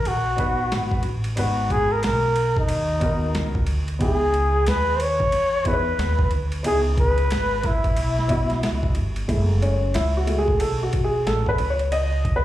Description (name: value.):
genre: hip hop, jazz-hop.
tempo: 91 BPM.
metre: 4/4.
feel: swing 62% on 16ths.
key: unclear.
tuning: A4 = 439 Hz.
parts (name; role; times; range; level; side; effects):
breathy flugelhorn; melody; 0.0-9.0 s; D#4 to C#5; -23 LUFS; equal; slapback echo.
upright bass; bass; 0.0-12.4 s; F#1 to E2; -24 LUFS; equal; none.
boom bap sampler-style drum kit; drums; 0.1-12.4 s; hi-hat, kick drum, ride cymbal, snare drum; -26 LUFS; equal; overdrive.
dark upright piano; accompaniment; 0.4-12.4 s; G#3 to D#5; -26 LUFS; equal; slapback echo.
room: light reverb, studio reverb.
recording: live gig heard through the venue's PA, club reverb.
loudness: -19 LUFS.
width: side -14 dB against mid.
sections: 0.0-9.3 A section; 9.3-12.4 B section.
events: upright piano solo 9.3-12.4.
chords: 0.0 G#m9; 4.0 C#m9; 9.3 F#m9; 11.6 C#7sus2.